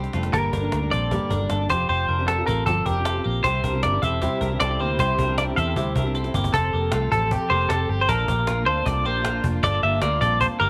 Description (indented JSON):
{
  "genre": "jangly indie pop",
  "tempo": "155 BPM",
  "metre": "4/4",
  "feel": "straight",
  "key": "F major",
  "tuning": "A4 = 440 Hz",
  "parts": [
    { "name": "fingerpicked steel-string acoustic guitar", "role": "accompaniment", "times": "0.0-6.5 s", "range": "G2 to A4", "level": "-32 LUFS", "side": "equal", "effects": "none" },
    { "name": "twelve-string electric guitar", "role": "arpeggios", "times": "0.0-10.7 s", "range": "A3 to Bb4", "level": "-32 LUFS", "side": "equal", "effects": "slapback echo" },
    { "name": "vintage muted fingered electric bass", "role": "bass", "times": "0.0-10.7 s", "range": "E1 to E2", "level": "-28 LUFS", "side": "equal", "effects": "none" },
    { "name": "cajon", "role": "drums", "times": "0.0-10.6 s", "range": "none", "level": "-33 LUFS", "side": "equal", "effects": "none" },
    { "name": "semi-hollow electric guitar", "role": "melody", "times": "0.3-10.7 s", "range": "G4 to E5", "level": "-26 LUFS", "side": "equal", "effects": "lush chorus, slapback echo" },
    { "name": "warm studio string section", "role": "sustained chords", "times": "3.5-10.7 s", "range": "C3 to A4", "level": "-36 LUFS", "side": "equal", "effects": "none" }
  ],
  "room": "light reverb, small room ambience",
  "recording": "none",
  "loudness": "-22 LUFS",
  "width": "mono",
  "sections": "0.3-6.5 A section; 6.5-10.7 B section",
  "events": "drum fill 0.0-0.3, 6.2-6.5",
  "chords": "0.3 Gmadd9; 1.7 Fsus2; 3.4 C; 6.5 Fadd9; 8.1 Bb; 9.6 Gm7",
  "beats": "| 0.34 0.73 1.11 1.50 | 1.89 2.28 2.67 3.05 | 3.44 3.83 4.22 4.60 | 4.99 5.38 5.76 6.15 | 6.54 6.93 7.31 7.70 | 8.09 8.47 8.86 9.25 | 9.63 10.02 10.41"
}